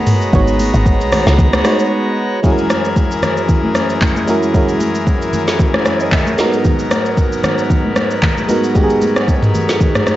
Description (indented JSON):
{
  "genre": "amapiano",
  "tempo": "114 BPM",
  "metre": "4/4",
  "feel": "swing 55% on 16ths",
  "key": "unclear",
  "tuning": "A4 = 439 Hz",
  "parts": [
    { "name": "hollow square pluck", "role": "melody", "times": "0.0-1.9 s", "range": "none", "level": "barely audible", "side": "none", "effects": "none" },
    { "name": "FM electric piano", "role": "accompaniment", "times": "0.0-10.2 s", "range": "G#3 to E5", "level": "-18 LUFS", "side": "right 2 dB", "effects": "chorus" },
    { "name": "pipe organ, full organ", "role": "sustained chords", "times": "0.0-10.2 s", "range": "F#2 to A#5", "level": "-20 LUFS", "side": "left 2 dB", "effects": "none" },
    { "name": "smooth R&B drum kit", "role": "drums", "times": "0.1-10.2 s", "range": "handclaps, hi-hat, kick drum, rim click, shaker, snare drum, toms", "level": "-15 LUFS", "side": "equal", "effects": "none" },
    { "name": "congas", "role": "percussion", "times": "0.1-10.2 s", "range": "none", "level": "-22 LUFS", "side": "left 2 dB", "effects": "none" },
    { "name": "woody log drum bass", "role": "bass", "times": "0.3-1.6 s", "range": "G#1 to C#2", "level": "-15 LUFS", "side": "equal", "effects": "none" }
  ],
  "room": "little or no reverb",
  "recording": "dry, gritty hardware recording, transformer saturation, cassette tape, nothing above 7.7 kHz",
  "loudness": "-12 LUFS",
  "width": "side -14 dB against mid",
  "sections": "0.0-2.4 A section; 2.4-10.2 B section",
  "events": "drop 0.0-2.4; break 1.9-2.4",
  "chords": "0.0 G#m9; 2.4 F#9; 6.4 G#m9"
}